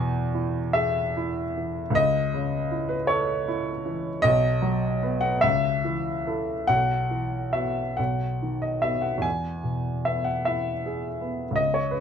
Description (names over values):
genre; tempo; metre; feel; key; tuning
classical, romantic nocturne for solo piano; 46-56 BPM (dotted quarters); 6/8; rubato; E major; A4 = 444 Hz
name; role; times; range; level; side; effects
warm baby grand piano; solo; 0.0-12.0 s; B1 to G#5; -23 LUFS; equal; none
room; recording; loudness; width
light reverb; dark, warm production; -23 LUFS; side -8 dB against mid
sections
0.0-12.0 A section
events
none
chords
0.0 E; 2.0 A/C#; 4.2 B; 5.4 A/C#; 6.7 Bsus4; 8.0 B; 9.2 E